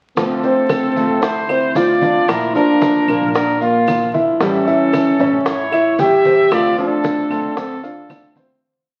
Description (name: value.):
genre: latin, Cuban son and guajira.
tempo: 114 BPM.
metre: 4/4.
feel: straight.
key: D minor.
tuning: A4 = 441 Hz.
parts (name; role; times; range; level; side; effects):
mellow French horn; melody; 0.2-8.4 s; Bb3 to G4; -19 LUFS; equal; none.
bright trumpet; second line; 0.2-8.4 s; F4 to E5; -25 LUFS; equal; none.
fingerpicked steel-string acoustic guitar; accompaniment; 0.2-8.6 s; D3 to F4; -28 LUFS; equal; none.
clear baby grand piano; arpeggios; 0.2-8.6 s; F3 to G5; -22 LUFS; equal; none.
upright bass; bass; 0.2-8.4 s; A1 to D2; -34 LUFS; equal; none.
bongos; percussion; 0.2-8.6 s; none; -26 LUFS; equal; none.
congas; percussion; 0.2-8.5 s; none; -31 LUFS; equal; none.
maracas; percussion; 0.2-8.6 s; none; -43 LUFS; equal; none.
claves; percussion; 0.7-8.4 s; none; -35 LUFS; equal; none.
room: wet large studio reverb, RT60 1.2 s.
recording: very old 78 rpm record, vinyl crackle.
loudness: -16 LUFS.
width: mono.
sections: 0.2-8.6 A section.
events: fade-out 6.5-8.6; drum fill 8.4.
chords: 0.2 Dm7; 2.3 Bb; 4.4 A7; 6.5 Dm7.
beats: | 0.17 0.70 1.23 1.76 | 2.29 2.81 3.34 3.87 | 4.40 4.93 5.46 5.99 | 6.51 7.04 7.57 8.10.